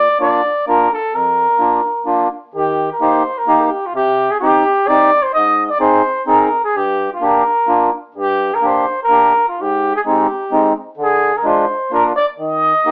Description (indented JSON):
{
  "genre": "alpine folk",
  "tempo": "128 BPM",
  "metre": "3/4",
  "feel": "straight",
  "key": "Eb major",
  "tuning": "A4 = 441 Hz",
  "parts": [
    { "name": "warm flugelhorn", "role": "melody", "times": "0.0-12.9 s", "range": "F4 to Eb5", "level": "-14 LUFS", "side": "equal", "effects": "none" },
    { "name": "mellow accordion", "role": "accompaniment", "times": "0.0-12.9 s", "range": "F2 to Ab4", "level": "-16 LUFS", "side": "equal", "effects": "none" }
  ],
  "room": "moderate studio reverb, RT60 0.6 s",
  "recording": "band playing live in one room, AM radio sound",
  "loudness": "-12 LUFS",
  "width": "side -31 dB against mid",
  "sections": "0.0-2.5 A section; 2.5-12.9 B section",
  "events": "none",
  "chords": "0.0 Bb; 2.5 Eb; 4.0 Cm; 5.4 Ab; 6.7 Gm; 7.7 Bb; 8.2 Gm; 9.6 Ab; 11.0 Dm7b5; 11.9 Bb; 12.4 N.C."
}